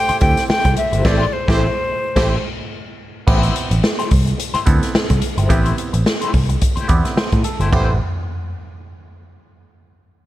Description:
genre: funk.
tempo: 108 BPM.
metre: 4/4.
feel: swing 56% on 16ths.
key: A minor.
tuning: A4 = 440 Hz.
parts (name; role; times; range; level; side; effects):
breathy silver concert flute; melody; 0.0-2.4 s; C5 to G5; -19 LUFS; left 1 dB; none.
mellow horn section; second line; 0.0-2.3, 7.7-7.9 s; A3 to C5; -27 LUFS; right 3 dB; none.
electric guitar at the edge of break-up; accompaniment; 0.1-7.9 s; A3 to C5; -25 LUFS; left 5 dB; wah, tremolo.
vintage muted picked electric bass; bass; 0.1-8.0 s; G1 to A2; -17 LUFS; equal; none.
swinging big-band drum kit; drums; 0.1-7.9 s; crash cymbal, hi-hat, kick drum, snare drum, splash cymbal, toms; -18 LUFS; equal; none.
mellow clav; stabs; 0.2-8.0 s; A3 to D5; -24 LUFS; right 4 dB; phaser.
room: studio reverb.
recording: none.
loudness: -15 LUFS.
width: side -15 dB against mid.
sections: 0.0-3.3 A section; 3.3-7.7 B section; 7.7-9.9 C section.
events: band accent 1.0-3.3; clav fill 6.6-7.7.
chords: 0.0 Am7.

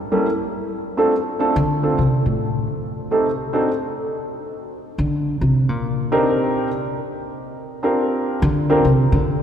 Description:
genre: jazz piano trio.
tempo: 140 BPM.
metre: 4/4.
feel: swing 65% on 8ths.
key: unclear.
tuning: A4 = 440 Hz.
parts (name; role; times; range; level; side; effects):
warm concert grand piano; melody; 0.1-8.8 s; G3 to Bb4; -20 LUFS; equal; none.
upright bass; bass; 1.6-9.4 s; A2 to D3; -20 LUFS; equal; none.
room: wet cathedral reverb, RT60 4.5 s.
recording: recorded in a church or concert hall.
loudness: -17 LUFS.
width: side -8 dB against mid.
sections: 0.0-9.4 A section.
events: upright bass solo 0.0-9.4.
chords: 0.3 D7(no3); 2.8 Adim; 3.7 N.C.; 4.6 Gm (rootless); 6.3 Cm9; 7.1 N.C.; 8.0 Bb69.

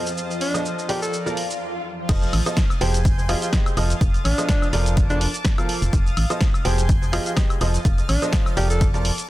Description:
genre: piano house.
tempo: 125 BPM.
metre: 4/4.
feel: swing 55% on 16ths.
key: F mixolydian.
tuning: A4 = 436 Hz.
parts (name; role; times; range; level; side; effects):
analog string pad; sustained chords; 0.0-9.3 s; F4 to A6; -34 LUFS; left 1 dB; ensemble chorus, sidechain pumping.
clear baby grand piano; riff; 0.0-9.1 s; F3 to G5; -27 LUFS; right 1 dB; sidechain pumping, dub echo.
granular cloud pad; texture; 0.0-1.6 s; C5 to G5; -35 LUFS; equal; built-in reverb, sidechain pumping.
punchy analog drum machine; drums; 0.1-9.3 s; crash cymbal, hi-hat, shaker, snare drum, woodblock; -28 LUFS; equal; studio reverb.
breathy alto saxophone; melody; 0.4-8.9 s; D4 to A4; -29 LUFS; equal; dub echo.
swell; sound effects; 1.3-2.1 s; none; -31 LUFS; left 2 dB; none.
organ-like FM bass; bass; 2.1-9.1 s; F1 to A1; -22 LUFS; equal; sidechain pumping.
electronic kick drum; drums; 2.1-8.9 s; none; -20 LUFS; equal; studio reverb.
room: little or no reverb.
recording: dense, heavily limited modern master.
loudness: -18 LUFS.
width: side -16 dB against mid.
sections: 0.0-2.1 A section; 2.1-9.3 B section.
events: swell 1.3-2.1; break 1.6-2.1; drop 2.1-9.3.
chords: 0.0 F7; 1.1 Bbmaj7/F; 2.1 F7; 2.8 Abmaj7/F; 3.8 F7; 5.0 Bbmaj7/F; 5.9 F7; 6.7 Abmaj7/F; 7.6 F7.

